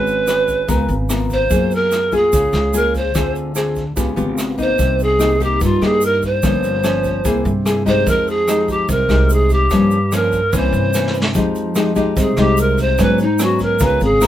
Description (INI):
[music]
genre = bossa nova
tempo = 146 BPM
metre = 4/4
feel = straight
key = F minor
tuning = A4 = 442 Hz
[part]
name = breathy bright pan flute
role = melody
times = 0.0-14.3 s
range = Eb4 to C5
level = -17 LUFS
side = right 1 dB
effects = none
[part]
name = nylon-string guitar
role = accompaniment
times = 0.0-14.3 s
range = G2 to B4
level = -19 LUFS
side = left 2 dB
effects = none
[part]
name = upright bass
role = bass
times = 0.0-14.3 s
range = G1 to Ab2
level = -20 LUFS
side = right 1 dB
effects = none
[part]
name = vintage brush drum kit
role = drums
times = 0.1-14.3 s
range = hi-hat, kick drum, rim click, snare drum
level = -24 LUFS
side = right 1 dB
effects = none
[part]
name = egg shaker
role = percussion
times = 0.1-14.3 s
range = none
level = -30 LUFS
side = right 6 dB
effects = none
[sound]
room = light reverb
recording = minimal, uncompressed stereo recording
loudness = -14 LUFS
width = side -12 dB against mid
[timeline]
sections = 0.0-11.3 A section; 11.3-14.3 B section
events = drum fill 10.9-11.3; pan flute solo 11.3-14.3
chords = 0.0 Abm7; 0.7 Db6; 1.5 Gbmaj9; 3.1 Dm7b5; 4.0 Db7#11; 4.8 Cm7; 6.4 Gm7b5; 7.2 C7b13; 8.1 Fm9; 9.7 Gm7b5; 10.5 C7b9; 11.3 Fm9; 13.0 Abm7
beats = 0.28 0.69 1.10 | 1.51 1.92 2.33 2.74 | 3.15 3.56 3.97 4.38 | 4.79 5.20 5.61 6.02 | 6.43 6.84 7.25 7.66 | 8.07 8.48 8.89 9.30 | 9.71 10.12 10.53 10.94 | 11.35 11.75 12.16 12.57 | 12.98 13.39 13.80 14.21